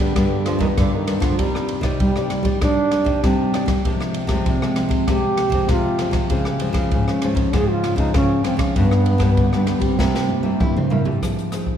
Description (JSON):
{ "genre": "samba and choro", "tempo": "98 BPM", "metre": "4/4", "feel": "straight", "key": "C minor", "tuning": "A4 = 439 Hz", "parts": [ { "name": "breathy trombone", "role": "melody", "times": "0.0-10.8 s", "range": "G3 to Ab4", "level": "-23 LUFS", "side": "right 1 dB", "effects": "none" }, { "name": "nylon-string guitar", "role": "accompaniment", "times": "0.0-11.8 s", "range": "G2 to D5", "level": "-22 LUFS", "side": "left 1 dB", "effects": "none" }, { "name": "nylon-string guitar", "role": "bass", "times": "0.0-11.2 s", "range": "G2 to E4", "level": "-24 LUFS", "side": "equal", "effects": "none" }, { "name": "open jazz drum kit", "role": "drums", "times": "0.0-11.8 s", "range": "hi-hat, kick drum, ride cymbal, rim click, snare drum, toms", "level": "-22 LUFS", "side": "equal", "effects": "none" }, { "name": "growling tenor saxophone", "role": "second line", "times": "0.5-1.9 s", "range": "D3 to G3", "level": "-29 LUFS", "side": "right 4 dB", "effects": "none" } ], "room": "wet cathedral reverb, RT60 4.4 s", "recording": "recorded in a church or concert hall", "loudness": "-17 LUFS", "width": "side -9 dB against mid", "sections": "0.0-11.2 A section", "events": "drum fill 10.0-11.2", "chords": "0.0 G; 1.4 Cmadd9; 3.9 Fm/C; 6.3 Dbmaj7; 8.8 G; 10.0 C7; 11.2 Fm7" }